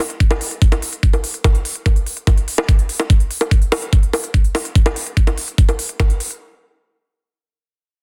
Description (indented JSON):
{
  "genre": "psychedelic trance",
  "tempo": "145 BPM",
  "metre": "4/4",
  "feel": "straight",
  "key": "none",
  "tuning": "none",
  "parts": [
    { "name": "electronic hi-hat and bongos", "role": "drums", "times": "0.0-6.4 s", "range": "none", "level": "-24 LUFS", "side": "equal", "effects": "overdrive" },
    { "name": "electronic kick drum", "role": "drums", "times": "0.2-6.1 s", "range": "none", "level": "-16 LUFS", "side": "equal", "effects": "none" }
  ],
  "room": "little or no reverb",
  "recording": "dense, heavily limited modern master",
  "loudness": "-17 LUFS",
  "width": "mono",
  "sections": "0.0-6.4 A section",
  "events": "none",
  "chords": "none"
}